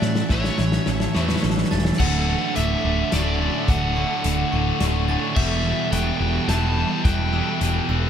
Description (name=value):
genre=post-rock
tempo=107 BPM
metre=3/4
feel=straight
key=D major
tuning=A4 = 440 Hz
part: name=crunchy overdriven guitar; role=melody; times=0.0-8.1 s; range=C#5 to A5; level=-28 LUFS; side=equal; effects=analog delay
part: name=warm symphonic string section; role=sustained chords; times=0.0-8.1 s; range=D3 to E5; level=-33 LUFS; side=left 2 dB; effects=none
part: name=electric guitar through a small old amp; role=arpeggios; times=0.0-8.1 s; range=D2 to A4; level=-34 LUFS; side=left 2 dB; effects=ensemble chorus, analog delay
part: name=glockenspiel with brass mallets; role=arpeggios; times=0.0-8.1 s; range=C#6 to A6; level=-35 LUFS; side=right 2 dB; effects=analog delay
part: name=sludgy distorted guitar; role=riff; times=0.0-8.1 s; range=D2 to A3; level=-26 LUFS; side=right 9 dB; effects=overdrive
part: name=tight distorted guitar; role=riff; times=0.0-8.1 s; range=D2 to A3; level=-28 LUFS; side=left 9 dB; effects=distortion
part: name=overdriven picked electric bass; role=bass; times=0.0-8.1 s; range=D1 to A2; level=-24 LUFS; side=equal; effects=none
part: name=loose indie drum kit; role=drums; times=0.0-7.7 s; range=crash cymbal, hi-hat, kick drum, snare drum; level=-25 LUFS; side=left 1 dB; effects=none
room=moderate huge ambient reverb, RT60 8.3 s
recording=dreamy mix soaked in reverb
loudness=-19 LUFS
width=side -8 dB against mid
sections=0.0-2.0 A section; 2.0-8.1 B section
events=build-up 0.0-2.0; drum fill 0.0-2.0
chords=0.0 A; 2.0 Dmaj7; 5.4 Emadd9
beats=| 0.31 0.87 1.43 | 2.00 2.56 3.12 | 3.68 4.25 4.81 | 5.37 5.93 6.49 | 7.05 7.61